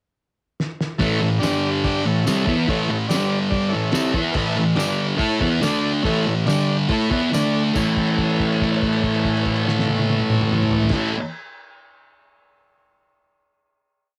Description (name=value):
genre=garage rock duo or trio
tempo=142 BPM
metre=4/4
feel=straight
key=A major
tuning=A4 = 439 Hz
part: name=cloth-damped thuddy drum kit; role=drums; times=0.6-11.0 s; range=crash cymbal, hi-hat, kick drum, snare drum, toms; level=-29 LUFS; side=equal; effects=cassette tape
part: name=combo organ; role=sustained chords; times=1.0-11.1 s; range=D4 to D5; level=-30 LUFS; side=equal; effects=cassette tape
part: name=thick fuzz guitar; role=riff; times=1.0-11.1 s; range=G2 to A4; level=-21 LUFS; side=equal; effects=distortion, cassette tape
part: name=tambourine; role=percussion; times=1.4-8.0 s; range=none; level=-37 LUFS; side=equal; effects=none
room=moderate booth ambience, RT60 0.2 s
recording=home recording on cassette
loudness=-20 LUFS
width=mono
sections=0.0-1.0 pickup bar; 1.0-7.8 riff; 7.8-11.2 final chord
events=drum fill 0.6-1.0; held note 7.8-10.9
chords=0.0 N.C.; 1.0 A; 1.4 G5; 2.1 A; 3.1 G5; 3.7 A; 4.8 G5; 5.2 A; 5.6 D5; 6.1 A; 6.5 G5; 6.9 A; 7.3 D5; 7.8 A